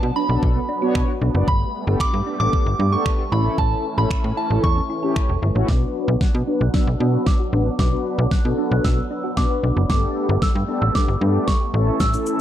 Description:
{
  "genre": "dance-pop",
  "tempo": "114 BPM",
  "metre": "4/4",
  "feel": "straight",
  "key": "B minor",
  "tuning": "A4 = 440 Hz",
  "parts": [
    { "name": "soft synth bell", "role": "melody", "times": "0.0-12.4 s", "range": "A5 to F#6", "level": "-26 LUFS", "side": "right 2 dB", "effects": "chorus, low-pass filter, ping-pong delay" },
    { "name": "mellow synth brass", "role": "accompaniment", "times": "0.0-12.4 s", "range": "A3 to D5", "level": "-25 LUFS", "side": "left 2 dB", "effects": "chorus, sidechain pumping, low-pass filter" },
    { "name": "filtered supersaw swell", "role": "sustained chords", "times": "0.0-12.4 s", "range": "E3 to D4", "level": "-30 LUFS", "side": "right 2 dB", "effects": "sidechain pumping, low-pass filter" },
    { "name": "thumb-piano-like synth pluck", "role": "arpeggios", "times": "0.0-12.1 s", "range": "F#3 to A5", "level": "-30 LUFS", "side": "right 2 dB", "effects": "chorus, phaser, sidechain pumping, low-pass filter, ping-pong delay" },
    { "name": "slap-like FM bass", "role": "bass", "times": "0.0-12.2 s", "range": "E1 to B2", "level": "-20 LUFS", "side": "equal", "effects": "sidechain pumping" },
    { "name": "pop drum kit", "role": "drums", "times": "0.4-12.4 s", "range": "finger snaps, hi-hat, kick drum, shaker, snare drum", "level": "-20 LUFS", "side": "equal", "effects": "none" }
  ],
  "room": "little or no reverb",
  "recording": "dark, warm production",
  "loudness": "-17 LUFS",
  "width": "side -11 dB against mid",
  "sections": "0.0-5.7 A section; 5.7-12.4 B section",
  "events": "build-up 5.7-12.4; drum fill 5.7-12.4",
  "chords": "0.0 Bm; 1.5 Gadd9; 3.3 A; 5.7 Bm; 9.9 Gadd9; 11.7 A"
}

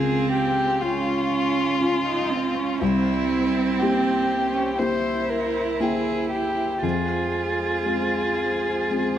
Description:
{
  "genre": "neoclassical piano and strings",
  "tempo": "59 BPM",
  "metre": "4/4",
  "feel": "rubato",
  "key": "unclear",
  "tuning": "A4 = 440 Hz",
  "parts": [
    { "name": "dark violin", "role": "melody", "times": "0.0-9.2 s", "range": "E4 to C5", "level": "-25 LUFS", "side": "left 2 dB", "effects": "analog delay" },
    { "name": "dark cello", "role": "second line", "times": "0.0-9.2 s", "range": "C4 to F4", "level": "-25 LUFS", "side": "right 5 dB", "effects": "none" },
    { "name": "felt-muted upright piano", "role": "accompaniment", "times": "0.0-9.2 s", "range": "C2 to G5", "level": "-27 LUFS", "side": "left 3 dB", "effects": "none" },
    { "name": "dark studio string section", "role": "sustained chords", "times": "0.0-9.2 s", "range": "Ab3 to F5", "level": "-34 LUFS", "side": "equal", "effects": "none" }
  ],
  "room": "wet spring reverb, RT60 1.7 s",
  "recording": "heard from further back in the room",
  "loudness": "-21 LUFS",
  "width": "side -10 dB against mid",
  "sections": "0.0-9.2 A section",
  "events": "none",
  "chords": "0.0 Db; 2.8 C7; 6.8 Fm"
}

